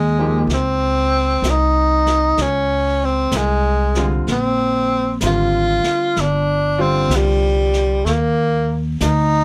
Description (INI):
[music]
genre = jazz ballad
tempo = 63 BPM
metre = 4/4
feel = swing 67% on 8ths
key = unclear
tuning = A4 = 440 Hz
[part]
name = breathy tenor saxophone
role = melody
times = 0.0-9.4 s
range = G3 to F4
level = -20 LUFS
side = equal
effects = none
[part]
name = upright bass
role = bass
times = 0.0-9.4 s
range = G1 to Eb2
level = -22 LUFS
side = equal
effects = none
[part]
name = clear grand piano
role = accompaniment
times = 0.2-8.1 s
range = D3 to G4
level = -27 LUFS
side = equal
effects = none
[part]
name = jazz brush drum kit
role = drums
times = 0.5-9.4 s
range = brushed snare drum, hi-hat, snare drum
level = -30 LUFS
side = equal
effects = none
[sound]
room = light reverb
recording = none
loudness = -17 LUFS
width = mono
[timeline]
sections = 0.0-9.4 A section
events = none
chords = 0.5 Dbmaj7sus2; 4.3 Bb13; 8.0 Ebmaj7(no3)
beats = | 0.48 1.43 2.38 3.32 | 4.27 5.21 6.16 7.10 | 8.05 8.99